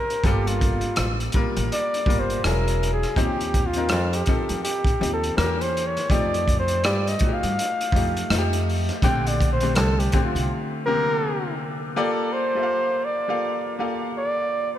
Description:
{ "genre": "R&B, neo-soul", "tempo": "82 BPM", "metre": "4/4", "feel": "swing 60% on 16ths", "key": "G minor", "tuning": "A4 = 444 Hz", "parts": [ { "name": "trumpet with bucket mute", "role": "melody", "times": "0.0-14.8 s", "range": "F4 to G5", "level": "-26 LUFS", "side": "equal", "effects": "none" }, { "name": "clear grand piano", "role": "accompaniment", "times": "0.0-14.8 s", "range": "C3 to F5", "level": "-27 LUFS", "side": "left 3 dB", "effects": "none" }, { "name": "crunchy breakbeat drum kit", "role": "drums", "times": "0.1-10.5 s", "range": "hi-hat, kick drum, rim click", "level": "-25 LUFS", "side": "equal", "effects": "gated reverb" }, { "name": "upright bass", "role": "bass", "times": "0.2-10.5 s", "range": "E1 to G2", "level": "-25 LUFS", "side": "equal", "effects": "none" } ], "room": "light reverb, studio ambience", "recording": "bright 1980s-style digital production", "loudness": "-20 LUFS", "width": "side -11 dB against mid", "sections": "0.0-11.9 A section; 11.9-14.8 B section", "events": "muted trumpet solo 0.0-11.9; break 10.5-11.9", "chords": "0.2 Gm9; 2.4 E69; 3.2 Eb69; 5.4 Edim7; 6.1 F9; 9.0 Bbmaj13; 11.9 Gm9" }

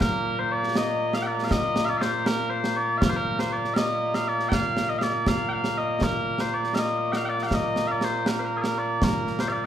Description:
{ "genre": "scottish traditional, Scottish pipe music", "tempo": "80 BPM (dotted quarters)", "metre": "6/8", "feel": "straight", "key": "Bb major", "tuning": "A4 = 435 Hz", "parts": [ { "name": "mellow small bagpipes", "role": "melody", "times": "0.0-9.7 s", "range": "Bb2 to G5", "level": "-24 LUFS", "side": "equal", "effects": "none" }, { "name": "concert snare drum and concert bass drum", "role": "drums", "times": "0.0-9.5 s", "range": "none", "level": "-27 LUFS", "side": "right 1 dB", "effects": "none" } ], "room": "wet recital hall reverb, RT60 1.4 s", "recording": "recorded in a church or concert hall", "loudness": "-23 LUFS", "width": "side -10 dB against mid", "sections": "0.0-9.7 A section", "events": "none", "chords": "none" }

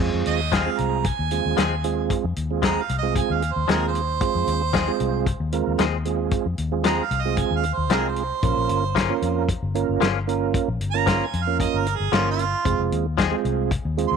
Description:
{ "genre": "straight-eighth soul blues", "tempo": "114 BPM", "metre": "4/4", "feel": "straight", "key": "F minor", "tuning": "A4 = 440 Hz", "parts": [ { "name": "mellow tonewheel organ", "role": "accompaniment", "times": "0.0-14.2 s", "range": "Ab3 to Bb4", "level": "-26 LUFS", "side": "right 14 dB", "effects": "slow rotary speaker, chorus vibrato" }, { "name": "vintage muted fingered electric bass", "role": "bass", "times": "0.0-14.2 s", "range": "F1 to F2", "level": "-26 LUFS", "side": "left 3 dB", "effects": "none" }, { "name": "warm harmonica", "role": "second line", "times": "0.3-14.2 s", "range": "F4 to C6", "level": "-26 LUFS", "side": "right 8 dB", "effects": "none" }, { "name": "warm soul drum kit", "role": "drums", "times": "0.3-14.1 s", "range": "hi-hat, kick drum, snare drum", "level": "-25 LUFS", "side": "left 2 dB", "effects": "none" }, { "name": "direct-recorded clean electric guitar", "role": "stabs", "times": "0.5-13.4 s", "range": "F3 to Ab4", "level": "-26 LUFS", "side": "left 14 dB", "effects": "none" } ], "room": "light reverb, studio reverb", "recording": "1960s-style stereo with parts hard left and right", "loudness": "-20 LUFS", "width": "side -6 dB against mid", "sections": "0.0-14.2 A section", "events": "harmonica solo 0.0-14.2", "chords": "0.0 Fm; 8.4 Bbm; 12.7 Fm" }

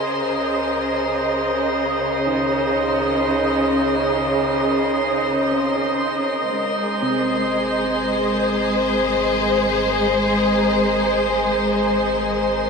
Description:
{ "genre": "ambient", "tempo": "free time", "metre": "none", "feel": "none", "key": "unclear", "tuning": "A4 = 437 Hz", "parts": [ { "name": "clear studio string section", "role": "sustained chords", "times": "0.0-12.7 s", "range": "Db3 to Eb5", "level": "-18 LUFS", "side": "equal", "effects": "none" }, { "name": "round analog bass", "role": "bass", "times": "0.0-12.7 s", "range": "Ab1 to Db2", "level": "-37 LUFS", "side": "right 1 dB", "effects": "none" }, { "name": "drifting glass-harmonics texture", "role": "texture", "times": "0.0-12.7 s", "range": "C5 to C6", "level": "-27 LUFS", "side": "right 1 dB", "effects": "chorus, built-in reverb" }, { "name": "muted felt-like synth keys", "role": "arpeggios", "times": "2.3-12.7 s", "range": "C4 to Bb5", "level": "-29 LUFS", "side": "right 3 dB", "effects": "chorus, diffuse ambient delay" } ], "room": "wet huge ambient reverb, RT60 9.4 s", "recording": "in a vast, echoing space", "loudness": "-17 LUFS", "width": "side -5 dB against mid", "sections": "0.0-12.7 A section", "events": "fade-in on synth keys 0.0-12.7; fade-in on analog synth bass 0.0-12.7", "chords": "0.0 Db5; 6.5 Abadd9" }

